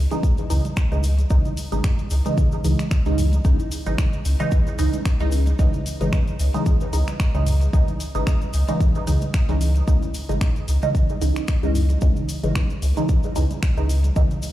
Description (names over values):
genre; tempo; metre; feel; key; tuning
dub techno; 112 BPM; 4/4; swing 55% on 16ths; C# minor; A4 = 440 Hz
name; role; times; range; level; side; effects
pure sine sub bass; bass; 0.0-14.3 s; G#1 to C#2; -20 LUFS; equal; sidechain pumping
filtered dub chord stab; stabs; 0.1-14.4 s; C#3 to D#4; -25 LUFS; right 1 dB; phaser, sidechain pumping, dub echo
deep house drum kit; drums; 0.1-14.5 s; finger snaps, hi-hat; -34 LUFS; left 1 dB; none
cabasa; percussion; 0.1-14.5 s; none; -41 LUFS; left 4 dB; none
electronic congas and toms; percussion; 0.1-14.4 s; none; -33 LUFS; right 2 dB; none
electronic kick drum; drums; 0.2-14.3 s; none; -19 LUFS; equal; none
room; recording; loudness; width
digital ambience; played on a big sound system in a bare room, large studio reverb; -18 LUFS; side -14 dB against mid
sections
0.0-14.5 A section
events
none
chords
0.0 C#madd9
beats
0.23 0.77 | 1.30 1.84 2.38 2.91 | 3.45 3.98 4.52 5.05 | 5.59 6.13 6.66 7.20 | 7.73 8.27 8.80 9.34 | 9.88 10.41 10.95 11.48 | 12.02 12.55 13.09 13.63 | 14.16